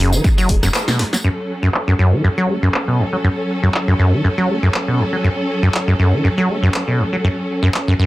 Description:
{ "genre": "acid house", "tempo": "120 BPM", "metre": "4/4", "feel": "swing 54% on 16ths", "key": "unclear", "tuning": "A4 = 441 Hz", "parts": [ { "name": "warm studio string section", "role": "sustained chords", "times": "0.0-8.1 s", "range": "F#3 to A4", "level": "-23 LUFS", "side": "equal", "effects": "sidechain pumping" }, { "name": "liquid acid bass", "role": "riff", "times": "0.0-8.1 s", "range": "F#2 to A3", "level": "-15 LUFS", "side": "equal", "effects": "chorus, tube saturation, cassette tape, sidechain pumping" }, { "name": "round analog bass", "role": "bass", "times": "0.0-0.7 s", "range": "E1 to F#1", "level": "-20 LUFS", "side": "equal", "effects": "tube saturation, sidechain pumping" }, { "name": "tambourine", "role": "percussion", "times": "0.1-1.2 s", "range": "none", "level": "-26 LUFS", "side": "equal", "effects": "none" }, { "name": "electronic kick drum", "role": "drums", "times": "0.2-0.6 s", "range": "none", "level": "-16 LUFS", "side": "equal", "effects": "none" }, { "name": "punchy analog drum machine", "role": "drums", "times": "0.2-7.9 s", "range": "crash cymbal, handclaps, hi-hat, rim click, snare drum", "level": "-20 LUFS", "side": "equal", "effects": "low-pass filter on hats, low-pass filter on snare, low-pass filter on cymbals" } ], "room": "wet studio ambience, RT60 0.5 s", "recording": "dense, heavily limited modern master", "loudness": "-14 LUFS", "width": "side -17 dB against mid", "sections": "0.0-1.2 A section; 1.2-8.1 B section", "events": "break 0.7-1.2; band accent 0.7; filter sweep on drum 1.2-8.1", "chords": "0.0 N.C.; 1.2 F#m", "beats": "0.24 0.74 | 1.24 1.74 2.24 2.74 | 3.24 3.74 4.24 4.74 | 5.24 5.74 6.24 6.74 | 7.24 7.74" }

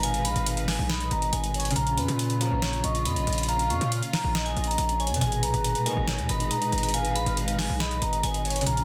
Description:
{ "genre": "hip hop, trap", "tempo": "139 BPM", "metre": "4/4", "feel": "half-time", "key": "unclear", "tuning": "A4 = 440 Hz", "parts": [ { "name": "vibraphone with hard mallets", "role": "melody", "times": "0.0-8.8 s", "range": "Ab5 to Db6", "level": "-32 LUFS", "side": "equal", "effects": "digital delay" }, { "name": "warm velvety synth lead", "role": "second line", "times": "0.0-8.7 s", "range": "Cb5 to F5", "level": "-39 LUFS", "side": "equal", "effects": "chorus, digital delay" }, { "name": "concert harp", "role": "accompaniment", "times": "0.0-8.8 s", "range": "Bb2 to Ab4", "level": "-35 LUFS", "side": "equal", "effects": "none" }, { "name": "warm symphonic string section", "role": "sustained chords", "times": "0.0-8.8 s", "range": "Bb2 to Bb5", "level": "-39 LUFS", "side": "equal", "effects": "none" }, { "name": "distorted 808-style bass", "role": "bass", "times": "0.0-8.8 s", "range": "Ab1 to Bb2", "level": "-31 LUFS", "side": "equal", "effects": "distortion" }, { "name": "booming analog drum machine", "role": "drums", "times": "0.0-8.8 s", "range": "hi-hat, snare drum", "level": "-33 LUFS", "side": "equal", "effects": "none" }, { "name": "dark brass ensemble", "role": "stabs", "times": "2.4-2.7, 5.9-6.2 s", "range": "Eb2 to F3", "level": "-40 LUFS", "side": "equal", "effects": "digital delay" } ], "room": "small room ambience", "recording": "dense, heavily limited modern master", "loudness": "-26 LUFS", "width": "mono", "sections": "0.0-8.8 A section", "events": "none", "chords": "0.0 Abmadd9; 1.8 Bbm; 5.2 Abmadd9", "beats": "| 0.03 0.46 0.90 1.33 | 1.76 2.19 2.62 3.05 | 3.49 3.92 4.35 4.78 | 5.21 5.64 6.08 6.51 | 6.94 7.37 7.80 8.23 | 8.67" }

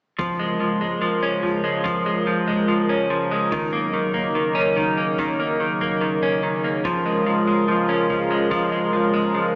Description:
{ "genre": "dream pop", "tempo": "72 BPM", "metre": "4/4", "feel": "straight", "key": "Bb minor", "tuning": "A4 = 440 Hz", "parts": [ { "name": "warm analog pad", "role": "sustained chords", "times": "0.5-9.6 s", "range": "Db3 to Bb4", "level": "-23 LUFS", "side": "equal", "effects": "chorus" }, { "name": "clean electric guitar", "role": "arpeggios", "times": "0.2-9.6 s", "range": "Eb3 to Db4", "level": "-21 LUFS", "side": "equal", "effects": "lush chorus, analog delay" }, { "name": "soft-mallet drum kit", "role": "drums", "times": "0.2-9.3 s", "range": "kick drum, toms", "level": "-39 LUFS", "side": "equal", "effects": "none" } ], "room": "wet spring reverb, RT60 2.1 s", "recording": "echo-heavy mix, small speaker sound", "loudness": "-18 LUFS", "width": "side -27 dB against mid", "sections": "0.2-9.6 A section", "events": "none", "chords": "0.2 Bbm7; 3.5 Gb6; 6.9 Bbm7", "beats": "| 0.19 1.02 1.85 2.69 | 3.52 4.36 5.19 6.02 | 6.86 7.69 8.52 9.36" }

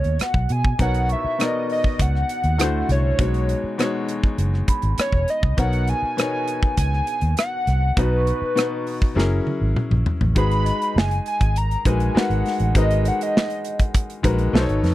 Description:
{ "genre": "lush 1970s-style soul", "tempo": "100 BPM", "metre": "4/4", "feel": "straight", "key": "unclear", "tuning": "A4 = 440 Hz", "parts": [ { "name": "hollow square lead", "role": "melody", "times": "0.0-13.8 s", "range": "B4 to B5", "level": "-25 LUFS", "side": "equal", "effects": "chorus" }, { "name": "clear grand piano", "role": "accompaniment", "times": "0.0-14.9 s", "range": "B2 to D#5", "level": "-26 LUFS", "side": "left 3 dB", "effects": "none" }, { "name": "vintage muted fingered electric bass", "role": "bass", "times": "0.0-14.9 s", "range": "E1 to B2", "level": "-20 LUFS", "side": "equal", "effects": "none" }, { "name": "modern studio drum kit", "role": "drums", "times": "0.0-14.9 s", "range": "hi-hat, kick drum, rim click, snare drum, toms", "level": "-21 LUFS", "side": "equal", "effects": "none" }, { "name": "large celesta", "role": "texture", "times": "0.8-14.9 s", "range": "D#4 to C#6", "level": "-32 LUFS", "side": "right 2 dB", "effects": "none" } ], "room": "little or no reverb", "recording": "dry, close 1970s-style studio recording", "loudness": "-18 LUFS", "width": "side -15 dB against mid", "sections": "0.0-10.4 A section; 10.4-14.9 B section", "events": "drum fill 9.2-10.4", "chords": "0.0 Bmaj13; 0.8 Bmaj9; 2.6 D9; 3.2 C#9sus4; 5.6 Bmaj9; 9.2 F#7; 10.4 G#m7", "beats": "0.20 | 0.80 1.39 1.99 2.59 | 3.19 3.79 4.38 4.98 | 5.58 6.18 6.77 7.37 | 7.97 8.57 9.16 9.76 | 10.36 10.96 11.55 12.15 | 12.75 13.35 13.94 14.54" }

